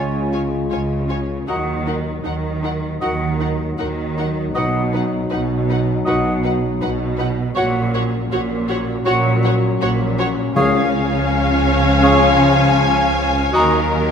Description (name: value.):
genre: cinematic, emotional film score for orchestra.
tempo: 80 BPM.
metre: 4/4.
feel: rubato.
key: F# major.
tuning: A4 = 440 Hz.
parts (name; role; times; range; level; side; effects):
dark cor anglais; second line; 0.0-13.8 s; C#5 to D#5; -25 LUFS; right 2 dB; none.
hollow concert flute; second line; 0.0-13.9 s; E#5 to A#5; -25 LUFS; left 2 dB; none.
warm clarinet; second line; 0.0-13.8 s; E#4 to G#4; -26 LUFS; left 1 dB; none.
mellow French horn section; sustained chords; 0.0-14.1 s; E#3 to E#4; -23 LUFS; left 5 dB; none.
muted studio cello section; bass; 0.0-14.1 s; A#2 to D#3; -22 LUFS; right 2 dB; none.
muted studio double bass section; bass; 0.0-14.1 s; A#1 to D#2; -23 LUFS; right 3 dB; none.
muted studio violin section; melody; 0.3-14.1 s; F#5 to G#5; -26 LUFS; left 3 dB; none.
muted studio violin section; second line; 0.3-14.1 s; A#4 to C#5; -27 LUFS; left 3 dB; none.
muted studio viola section; accompaniment; 0.3-14.1 s; D#4 to E#5; -26 LUFS; equal; none.
timpani; percussion; 10.6-11.6 s; C#3; -23 LUFS; left 2 dB; none.
room: wet scoring stage reverb, RT60 2.0 s.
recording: none.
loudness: -16 LUFS.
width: side -7 dB against mid.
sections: 0.0-14.1 A section.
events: none.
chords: 0.0 C#; 1.5 D#m; 4.6 B; 7.6 F#/A#; 10.6 C#; 13.5 D#m.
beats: 0.72 | 1.48 2.25 3.02 3.79 | 4.55 5.31 6.07 6.82 | 7.57 8.32 9.07 9.81 | 10.56 11.30 12.04 12.79 | 13.54.